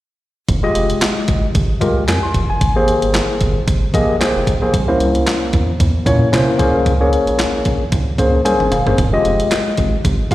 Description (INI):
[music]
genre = early-eighties boogie funk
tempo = 113 BPM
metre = 4/4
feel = swing 56% on 16ths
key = F minor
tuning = A4 = 444 Hz
[part]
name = rubbery square bass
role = bass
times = 0.5-10.3 s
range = F1 to C3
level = -18 LUFS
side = right 1 dB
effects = none
[part]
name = crisp 8-bit digital drum machine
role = drums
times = 0.5-10.3 s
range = handclaps, hi-hat, kick drum, snare drum, toms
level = -18 LUFS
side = right 1 dB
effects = none
[part]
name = tine electric piano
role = accompaniment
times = 0.6-10.3 s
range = Ab3 to C6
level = -16 LUFS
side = left 1 dB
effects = medium stereo tremolo, slapback echo
[sound]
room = light reverb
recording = live gig heard through the venue's PA, recital hall reverb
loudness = -13 LUFS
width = side -16 dB against mid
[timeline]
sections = 0.5-10.3 A section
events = tine electric piano fill 8.2-9.0; drum fill 8.5-9.0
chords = 0.5 Fm9; 4.7 C7b9; 6.6 Bbm9; 9.0 Fm9